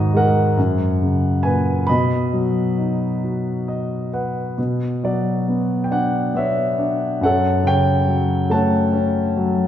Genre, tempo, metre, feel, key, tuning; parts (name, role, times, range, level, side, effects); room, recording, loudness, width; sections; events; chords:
classical, lyrical solo piano; 46 BPM (dotted quarters); 6/8; rubato; B major, B minor from 4.6 s; A4 = 439 Hz
warm concert grand piano; solo; 0.0-9.7 s; F#2 to B5; -17 LUFS; equal
wet concert hall reverb, RT60 1.8 s; recorded in a church or concert hall; -17 LUFS; side -10 dB against mid
0.0-4.6 A section; 4.6-9.7 B section
grand piano fill 3.2-4.6
0.0 G#5; 0.6 F#; 1.9 B; 4.6 Bmadd9; 7.2 F#m